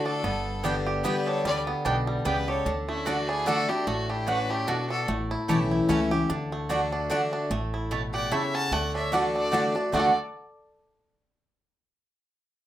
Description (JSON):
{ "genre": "bluegrass", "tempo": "148 BPM", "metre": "3/4", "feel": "swing 55% on 8ths", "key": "D major", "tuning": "A4 = 440 Hz", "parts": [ { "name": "bluegrass banjo", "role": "melody", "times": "0.0-10.2 s", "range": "G3 to A4", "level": "-31 LUFS", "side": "right 3 dB", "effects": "none" }, { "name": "clear fiddle", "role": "melody", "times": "0.0-5.1, 8.1-10.1 s", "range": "E4 to A5", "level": "-31 LUFS", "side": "left 1 dB", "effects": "none" }, { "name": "clear fiddle", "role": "second line", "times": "0.0-5.1, 8.1-10.1 s", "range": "C#4 to F#5", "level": "-38 LUFS", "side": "left 3 dB", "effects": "none" }, { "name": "picked steel-string acoustic guitar", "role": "accompaniment", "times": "0.0-10.1 s", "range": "G2 to G4", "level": "-28 LUFS", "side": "left 2 dB", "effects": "none" }, { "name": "upright bass", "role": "bass", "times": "0.2-10.1 s", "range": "G1 to D2", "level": "-34 LUFS", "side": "right 1 dB", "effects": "none" }, { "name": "mandolin", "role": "stabs", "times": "0.6-10.1 s", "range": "A3 to A5", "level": "-28 LUFS", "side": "right 3 dB", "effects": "none" } ], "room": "wet small room reverb, RT60 0.6 s", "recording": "rough home demo mix", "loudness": "-24 LUFS", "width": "side -12 dB against mid", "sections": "0.0-7.5 A section; 7.5-9.9 B section; 9.9-11.1 C section", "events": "none", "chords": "0.2 G; 2.7 D; 5.1 A; 6.3 D; 7.5 A; 8.7 D" }